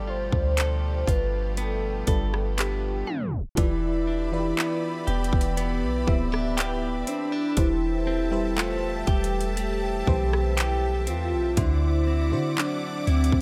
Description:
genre	contemporary R&B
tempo	60 BPM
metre	4/4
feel	straight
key	unclear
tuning	A4 = 440 Hz
part	warm velvety synth lead	melody	0.0-13.4 s	B3 to D5	-31 LUFS	equal	chorus
part	FM electric piano with soft pad layer	accompaniment	0.0-13.4 s	D3 to E5	-35 LUFS	equal	chorus
part	rich studio string section	sustained chords	0.0-13.4 s	B2 to D6	-39 LUFS	equal	none
part	direct-recorded clean electric guitar	arpeggios	0.0-13.4 s	D3 to A4	-37 LUFS	equal	spring reverb
part	warm 808-style bass	bass	0.0-13.4 s	D1 to D3	-29 LUFS	equal	none
part	trap drum kit	drums	0.3-13.4 s	handclaps, hi-hat, kick drum, rim click	-28 LUFS	equal	none
room	little or no reverb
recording	tape stop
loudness	-25 LUFS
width	mono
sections	0.0-3.6 A section; 3.6-13.4 B section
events	tape stop 3.1-3.6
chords	0.0 G9; 3.6 Em7; 7.6 Am7/E; 11.6 D9

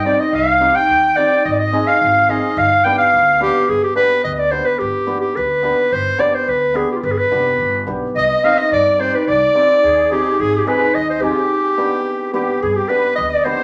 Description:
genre	klezmer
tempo	107 BPM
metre	2/4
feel	straight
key	G phrygian dominant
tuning	A4 = 441 Hz
part	clear clarinet	melody	0.0-13.6 s	F4 to G5	-17 LUFS	equal	none
part	musette accordion	second line	0.0-3.6, 8.2-13.6 s	F4 to G5	-25 LUFS	equal	none
part	cimbalom	accompaniment	0.0-13.6 s	B3 to Ab4	-25 LUFS	equal	none
part	upright bass	bass	0.0-13.5 s	F1 to G2	-30 LUFS	equal	none
room	wet large studio reverb, RT60 0.8 s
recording	none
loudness	-16 LUFS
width	mono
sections	0.0-3.7 A section; 3.7-12.6 B section; 12.6-13.6 B section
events	clarinet solo 0.0-3.7; break 11.5-12.6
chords	0.0 Cm; 1.4 Ab; 2.6 G; 8.2 Cm; 10.4 Ab; 11.5 G

